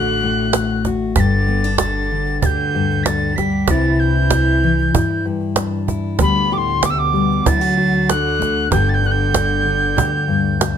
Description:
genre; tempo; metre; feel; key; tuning
acoustic folk duo or small band; 95 BPM; 4/4; straight; G major; A4 = 440 Hz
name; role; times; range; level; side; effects
mellow tin whistle; melody; 0.0-10.8 s; B5 to B6; -20 LUFS; right 1 dB; none
rich cello; second line; 0.0-10.8 s; G2 to G3; -24 LUFS; right 4 dB; none
fingerpicked steel-string acoustic guitar; accompaniment; 0.0-10.8 s; G2 to G4; -21 LUFS; left 6 dB; none
upright bass; bass; 0.0-10.8 s; G1 to G2; -21 LUFS; equal; none
cajon; percussion; 0.2-10.8 s; none; -19 LUFS; right 5 dB; none
room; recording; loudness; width
light reverb; close, detailed microphones; -15 LUFS; side -8 dB against mid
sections
0.0-10.8 A section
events
none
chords
0.0 D; 1.2 Gsus2; 3.7 Cadd9; 6.2 G/D; 7.5 D; 8.7 G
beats
0.53 | 1.16 1.79 2.42 3.05 | 3.68 4.31 4.94 5.57 | 6.20 6.83 7.45 8.08 | 8.71 9.34 9.97 10.61

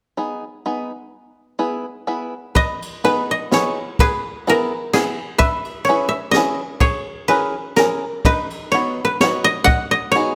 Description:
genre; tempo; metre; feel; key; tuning
musette waltz; 127 BPM; 3/4; swing 53% on 8ths, rubato; G# minor; A4 = 440 Hz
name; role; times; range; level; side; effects
bluegrass banjo; accompaniment; 0.2-10.3 s; B3 to B4; -24 LUFS; equal; none
koto; melody; 2.6-10.3 s; D#4 to F#5; -20 LUFS; equal; none
jazz brush drum kit; drums; 2.6-10.3 s; kick drum, ride cymbal, snare drum; -25 LUFS; equal; none
room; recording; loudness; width
moderate recital hall reverb, RT60 1.6 s; close, detailed microphones; -19 LUFS; mono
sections
0.0-2.6 A section; 2.6-10.3 B section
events
none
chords
0.0 G#m; 1.1 E; 2.6 G#m; 4.0 E; 5.4 C#m7; 6.8 A#m7b5; 8.3 B; 9.7 G#m7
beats
0.18 0.66 | 1.13 1.60 2.08 | 2.56 3.04 3.52 | 3.99 4.46 4.93 | 5.39 5.86 6.33 | 6.81 7.29 7.77 | 8.25 8.73 9.21 | 9.68 10.14

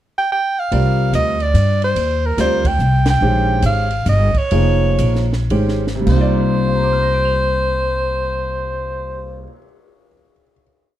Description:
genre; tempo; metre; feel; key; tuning
modal jazz; 100-145 BPM; 3/4; swing 64% on 8ths; C minor; A4 = 440 Hz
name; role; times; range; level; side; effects
warm soprano saxophone; melody; 0.2-9.5 s; Bb4 to G5; -19 LUFS; right 1 dB; none
clear grand piano; accompaniment; 0.7-10.6 s; C3 to F7; -22 LUFS; right 1 dB; none
upright bass; bass; 0.7-9.5 s; F1 to G2; -17 LUFS; equal; none
compact cocktail drum kit; drums; 0.7-9.5 s; crash cymbal, cymbal swell, hi-hat, kick drum, ride cymbal, snare drum; -26 LUFS; right 1 dB; none
room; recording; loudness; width
little or no reverb; dark, warm production; -14 LUFS; side -12 dB against mid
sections
0.0-0.7 pickup bar; 0.7-6.1 A section; 6.1-9.7 final chord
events
band accent 3.0; slowing down 3.2-6.1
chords
0.0 N.C.; 0.7 Cm11; 3.2 Bbm11; 6.1 Cm11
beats
0.31 | 0.72 1.14 1.55 | 1.97 2.38 2.79 | 3.21 3.63 4.06 | 4.51 4.99 5.50 | 6.07 6.67 7.26 | 7.86 8.46 9.06

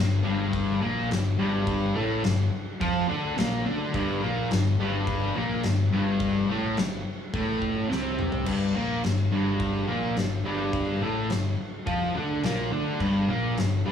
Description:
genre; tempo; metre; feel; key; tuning
garage rock duo or trio; 106 BPM; 4/4; straight; G minor; A4 = 442 Hz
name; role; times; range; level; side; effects
fuzz guitar; riff; 0.0-13.9 s; G2 to F4; -25 LUFS; left 1 dB; distortion
fuzz fingered electric bass; bass; 0.0-13.9 s; G1 to F2; -32 LUFS; left 2 dB; overdrive, tube saturation
oversized low-tuned drum kit; drums; 0.5-13.7 s; crash cymbal, kick drum, snare drum, toms; -31 LUFS; left 1 dB; none
room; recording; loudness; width
light reverb; small room ambience; -24 LUFS; side -8 dB against mid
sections
0.0-8.5 A section; 8.5-13.9 B section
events
drum fill 7.9-8.5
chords
0.0 Gm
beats
0.53 1.09 | 1.66 2.23 2.80 3.36 | 3.93 4.50 5.06 5.63 | 6.20 6.76 7.33 7.90 | 8.46 9.03 9.60 10.16 | 10.73 11.30 11.87 12.44 | 13.00 13.57

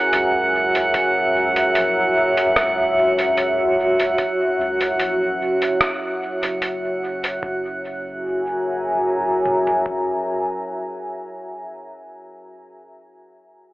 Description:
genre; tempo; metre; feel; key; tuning
ambient dub; 74 BPM; 4/4; swing 53% on 16ths; F# mixolydian; A4 = 440 Hz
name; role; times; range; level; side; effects
deep dark ambient pad; sustained chords; 0.0-11.4 s; F#4 to A#5; -20 LUFS; equal; chorus, built-in reverb
drifting glass-harmonics texture; texture; 0.0-7.4 s; F#5; -23 LUFS; right 1 dB; chorus, built-in reverb
soft dub sub bass; bass; 0.1-9.8 s; F#1 to C#2; -41 LUFS; equal; none
lo-fi sampler-style drum kit; drums; 0.1-7.4 s; hi-hat, rim click; -24 LUFS; equal; small room ambience, dub echo
booming analog drum machine; drums; 0.9-10.1 s; kick drum, toms; -33 LUFS; equal; overdrive, small room ambience
room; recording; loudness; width
wet echo chamber reverb, RT60 2.1 s; telephone sound; -18 LUFS; side -18 dB against mid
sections
0.0-7.4 A section; 7.4-10.7 B section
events
none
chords
0.0 F#7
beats
0.13 | 0.94 1.75 2.56 3.38 | 4.19 5.00 5.81 6.62 | 7.43 8.24 9.05 9.86

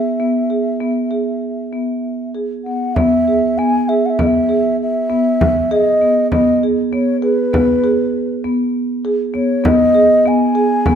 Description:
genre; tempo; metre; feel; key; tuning
contemporary instrumental, chamber music in an uneven meter; 197 BPM (eighths); 11/8; straight; E major; A4 = 439 Hz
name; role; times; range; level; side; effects
mellow hollow wooden flute; melody; 0.0-11.0 s; B4 to G#5; -17 LUFS; left 1 dB; none
marimba with medium mallets; arpeggios; 0.0-11.0 s; B3 to G#4; -16 LUFS; right 1 dB; none
frame drum; percussion; 3.0-11.0 s; none; -20 LUFS; equal; none
room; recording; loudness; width
moderate recital hall reverb, RT60 1.3 s; none; -13 LUFS; side -8 dB against mid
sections
0.0-3.0 A section; 3.0-11.0 A section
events
none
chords
0.0 E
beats
0.18 0.49 0.79 1.10 1.40 1.71 2.02 2.33 2.64 | 2.95 3.26 3.57 3.87 4.18 4.49 4.79 5.10 5.40 5.71 6.01 | 6.31 6.62 6.92 7.22 7.53 7.83 8.14 8.44 8.74 9.05 9.35 | 9.65 9.96 10.26 10.56 10.86

